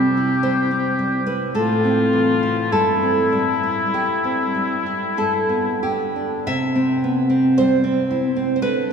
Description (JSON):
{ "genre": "romantic duo for oboe and classical guitar", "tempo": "44-57 BPM", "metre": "3/4", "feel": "rubato", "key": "C major", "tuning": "A4 = 440 Hz", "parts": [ { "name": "clear oboe", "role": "melody", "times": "0.0-5.8 s", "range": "E4 to G4", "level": "-24 LUFS", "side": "left 3 dB", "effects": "none" }, { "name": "nylon-string guitar", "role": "accompaniment", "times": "0.0-8.9 s", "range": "G2 to E5", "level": "-18 LUFS", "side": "equal", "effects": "none" } ], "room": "wet cathedral reverb, RT60 6.4 s", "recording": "recorded in a church or concert hall, small room ambience", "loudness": "-17 LUFS", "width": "side -6 dB against mid", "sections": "0.0-6.5 A section; 6.5-8.9 B section", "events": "none", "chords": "0.0 C; 1.6 Am; 2.7 C/G; 5.2 G; 6.5 C" }